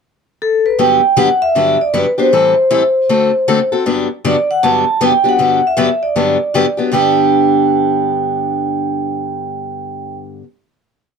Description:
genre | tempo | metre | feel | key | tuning
jazz | 157 BPM | 4/4 | swing 62% on 8ths | G major | A4 = 442 Hz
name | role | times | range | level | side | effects
vibraphone with hard mallets | melody | 0.4-10.1 s | A4 to A5 | -14 LUFS | right 1 dB | none
picked steel-string acoustic guitar | accompaniment | 0.8-10.4 s | G2 to A4 | -16 LUFS | left 3 dB | none
room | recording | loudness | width
light reverb | dark, warm production | -11 LUFS | side -6 dB against mid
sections
0.0-0.8 pickup bar; 0.8-6.9 A section; 6.9-10.0 final chord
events
none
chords
0.0 N.C.; 0.8 Gmaj7; 2.3 Am7; 3.1 D7; 3.9 Gmaj7; 6.9 G

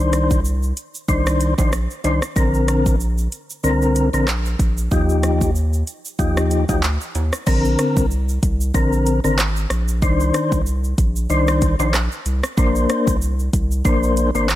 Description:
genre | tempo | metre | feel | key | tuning
dancehall | 94 BPM | 4/4 | swing 56% on 16ths | unclear | A4 = 440 Hz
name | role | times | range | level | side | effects
percussive tonewheel organ | accompaniment | 0.0-14.5 s | D3 to C5 | -20 LUFS | left 2 dB | fast rotary speaker
saturated sub bass | bass | 0.0-14.6 s | Ab1 to Eb2 | -20 LUFS | equal | none
afro-pop drum kit | drums | 0.1-14.6 s | crash cymbal, handclaps, hi-hat, kick drum, rim click, shaker | -21 LUFS | equal | overdrive
egg shaker and timbales | percussion | 0.1-14.6 s | none | -36 LUFS | right 9 dB | none
room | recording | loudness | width
little or no reverb | none | -16 LUFS | side -14 dB against mid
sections
0.0-7.5 A section; 7.5-14.6 B section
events
none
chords
0.0 Cmadd9; 2.4 Bbadd9; 4.9 Ebadd9; 7.5 Bbadd9; 10.0 Cmadd9; 12.6 Bbadd9

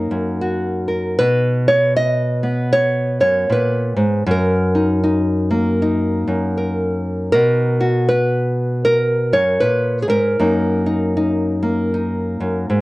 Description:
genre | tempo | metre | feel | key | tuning
folk, solo fingerstyle acoustic guitar | 78 BPM | 4/4 | swing 62% on 8ths | B major | A4 = 440 Hz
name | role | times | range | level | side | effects
nylon-string guitar | solo | 0.0-12.8 s | F#2 to D#5 | -15 LUFS | equal | none
room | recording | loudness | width
moderate studio reverb, RT60 0.5 s | worn, warbling old tape, cassette tape, warbly pitch drift | -15 LUFS | side -20 dB against mid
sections
0.0-12.8 A section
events
none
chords
0.0 F#6; 1.2 Bmaj7; 4.3 F#6; 7.3 B5; 10.4 F#6

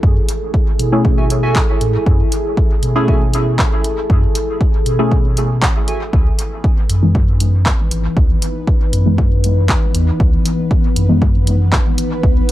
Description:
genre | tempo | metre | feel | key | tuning
dub techno | 118 BPM | 4/4 | straight | C# minor | A4 = 440 Hz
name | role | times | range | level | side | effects
deep dark ambient pad | sustained chords | 0.0-12.5 s | E3 to B4 | -23 LUFS | left 1 dB | chorus, built-in reverb, sidechain pumping
pure sine sub bass | bass | 0.0-12.4 s | G#1 to B2 | -16 LUFS | equal | sidechain pumping
electronic kick drum | drums | 0.0-12.3 s | none | -15 LUFS | equal | none
punchy analog drum machine | drums | 0.3-12.5 s | handclaps, hi-hat | -21 LUFS | equal | dub echo
deep mellow chord stab | stabs | 0.9-11.4 s | E3 to G#4 | -21 LUFS | left 1 dB | chorus, phaser, sidechain pumping, dub echo
warbly lo-fi synth keys | riff | 1.2-6.0 s | F#4 to G#5 | -26 LUFS | right 2 dB | chorus, sidechain pumping, dub echo
bubbling stepped-filter texture | texture | 6.7-12.5 s | B3 to B4 | -26 LUFS | left 2 dB | chorus, built-in reverb, sidechain pumping
room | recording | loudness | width
little or no reverb | dry, gritty hardware recording | -12 LUFS | side -14 dB against mid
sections
0.0-6.1 A section; 6.1-12.5 A section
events
filter sweep on synth stab 6.1-12.5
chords
0.0 F#m9; 6.1 C#m9 (rootless)

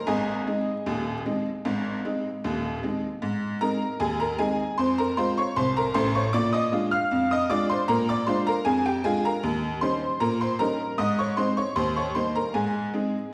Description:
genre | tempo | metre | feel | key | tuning
ragtime piano | 77 BPM | 2/4 | straight | Ab major | A4 = 440 Hz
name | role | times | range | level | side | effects
tack piano | solo | 0.0-13.3 s | Eb1 to F6 | -26 LUFS | equal | none
room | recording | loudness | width
wet recital hall reverb, RT60 1.6 s | recorded in a church or concert hall, vinyl crackle | -26 LUFS | mono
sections
0.0-3.2 A section; 3.2-13.3 A section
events
none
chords
0.1 Ab; 4.8 Fm; 6.3 Bb7; 9.4 Eb7; 11.0 Ab; 11.8 Eb; 12.5 Ab

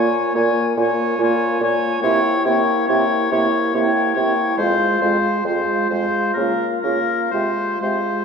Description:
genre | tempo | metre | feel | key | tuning
classical, slow romantic movement for wind quintet | 61-72 BPM | 3/4 | rubato | F minor | A4 = 439 Hz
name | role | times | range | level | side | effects
mellow hollow concert flute | melody | 0.0-8.2 s | F5 to Ab5 | -26 LUFS | left 6 dB | none
clear oboe | second line | 0.0-8.2 s | Bb4 to Db5 | -21 LUFS | left 3 dB | none
clear French horn | accompaniment | 0.0-8.2 s | Ab3 to Bb3 | -25 LUFS | equal | none
mellow clarinet | accompaniment | 0.0-8.2 s | E4 to F4 | -23 LUFS | right 4 dB | none
mellow bassoon | bass | 0.0-8.0 s | F2 to Db3 | -23 LUFS | right 1 dB | none
room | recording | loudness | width
wet recital hall reverb, RT60 1.6 s | heard from further back in the room | -16 LUFS | side -6 dB against mid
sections
0.0-8.2 A section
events
none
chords
0.0 Bbm7; 2.0 C7b9; 4.6 Fm; 6.4 Bbm/Db; 7.3 Fm/C

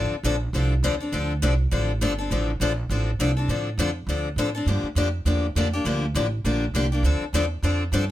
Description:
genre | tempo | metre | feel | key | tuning
acoustic string swing (jazz manouche) | 203 BPM | 4/4 | swing 58% on 8ths | D minor | A4 = 436 Hz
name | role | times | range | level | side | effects
picked steel-string acoustic guitar | accompaniment | 0.0-8.0 s | D3 to A4 | -25 LUFS | left 2 dB | none
upright bass | bass | 0.0-8.1 s | G1 to A2 | -24 LUFS | right 1 dB | none
room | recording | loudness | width
little or no reverb | close, detailed microphones | -22 LUFS | side -14 dB against mid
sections
0.0-8.1 A section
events
none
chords
0.0 Dm7; 4.7 Gm7; 7.0 Dm7

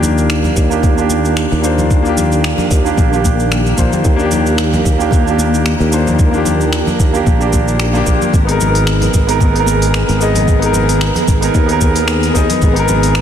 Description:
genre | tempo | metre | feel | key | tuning
sunset chillout | 112 BPM | 4/4 | swing 55% on 16ths | Eb major | A4 = 441 Hz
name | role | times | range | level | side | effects
clear concert grand piano | accompaniment | 0.0-13.2 s | Bb3 to Eb5 | -16 LUFS | moving between left 3 dB and right 7 dB | auto-pan, tape echo
soft string machine | sustained chords | 0.0-13.2 s | Eb3 to Bb4 | -20 LUFS | equal | ensemble chorus
sustaining fretless electric bass | bass | 0.0-13.2 s | Ab1 to Eb2 | -16 LUFS | equal | none
smooth R&B drum kit | drums | 0.0-13.2 s | finger snaps, hi-hat, shaker | -22 LUFS | equal | soft clipping on snare, small room ambience
congas | percussion | 0.0-13.0 s | none | -24 LUFS | left 2 dB | none
electronic kick drum | drums | 0.6-12.7 s | none | -14 LUFS | equal | small room ambience
room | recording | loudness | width
light reverb, digital ambience | dense, heavily limited modern master | -11 LUFS | side -9 dB against mid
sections
0.0-13.2 A section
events
none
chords
0.0 Ebmaj7; 8.3 Abmadd9

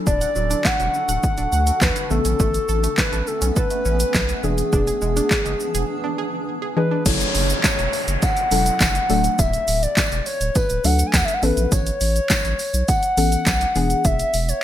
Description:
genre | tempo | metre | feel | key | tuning
dance-pop | 103 BPM | 4/4 | straight | F# minor | A4 = 440 Hz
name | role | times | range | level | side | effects
soft round pluck | accompaniment | 0.0-14.6 s | C#3 to A4 | -25 LUFS | left 4 dB | chorus, sidechain pumping
granular cloud pad | sustained chords | 0.0-7.0 s | D3 to A4 | -30 LUFS | equal | built-in reverb, sidechain pumping
hollow clarinet-like synth lead | melody | 0.1-14.6 s | G#4 to G#5 | -22 LUFS | left 1 dB | chorus, digital delay
analog pluck | arpeggios | 0.1-7.0 s | F#3 to F#5 | -31 LUFS | right 6 dB | chorus, sidechain pumping, digital delay
saturated sub bass | bass | 0.1-14.5 s | D1 to D2 | -22 LUFS | equal | sidechain pumping
punchy analog drum machine | drums | 0.1-14.6 s | crash cymbal, handclaps, hi-hat, kick drum, shaker, snare drum | -21 LUFS | equal | gated reverb
tambourine | percussion | 7.1-14.5 s | none | -36 LUFS | right 7 dB | none
downlifter | sound effects | 7.1-11.7 s | none | -28 LUFS | equal | none
room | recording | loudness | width
light reverb | bright 1980s-style digital production | -17 LUFS | side -12 dB against mid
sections
0.0-7.1 A section; 7.1-14.6 B section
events
break 5.9-7.1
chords
0.0 D; 2.1 Aadd9; 4.4 E7; 7.1 F#m7; 9.1 D; 11.4 Aadd9; 13.8 E7

